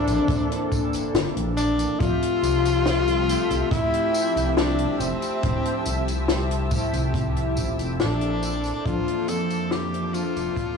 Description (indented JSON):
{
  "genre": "vaporwave",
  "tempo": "70 BPM",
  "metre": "4/4",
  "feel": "straight",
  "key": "F major",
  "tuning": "A4 = 440 Hz",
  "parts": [
    { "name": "breathy tenor saxophone", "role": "melody", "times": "0.0-10.8 s", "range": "C4 to A4", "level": "-26 LUFS", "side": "left 3 dB", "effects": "vintage 12-bit sampler grit, tape echo" },
    { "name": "mellow synth brass", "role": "accompaniment", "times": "0.0-10.8 s", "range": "E3 to E5", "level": "-27 LUFS", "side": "equal", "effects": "lush chorus, vintage 12-bit sampler grit, tape echo" },
    { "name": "chorused synth bass", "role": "bass", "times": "0.1-10.5 s", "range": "F1 to F2", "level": "-26 LUFS", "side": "equal", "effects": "none" },
    { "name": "compact cocktail drum kit", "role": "drums", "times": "0.1-10.7 s", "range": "hi-hat, snare drum, tambourine", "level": "-29 LUFS", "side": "left 4 dB", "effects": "vintage 12-bit sampler grit" },
    { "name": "kick drum", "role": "drums", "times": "0.3-10.7 s", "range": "none", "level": "-27 LUFS", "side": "right 1 dB", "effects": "vintage 12-bit sampler grit" },
    { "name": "muted studio string section", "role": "sustained chords", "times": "2.0-10.8 s", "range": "G4 to E6", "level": "-37 LUFS", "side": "equal", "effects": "none" }
  ],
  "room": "little or no reverb",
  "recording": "dry, gritty hardware recording, small room reverb",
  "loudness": "-21 LUFS",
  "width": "side -5 dB against mid",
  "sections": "0.0-10.8 A section",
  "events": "fade-out 6.6-10.8",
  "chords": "0.0 C13; 2.0 Fmaj9; 8.4 Bbmaj9#11"
}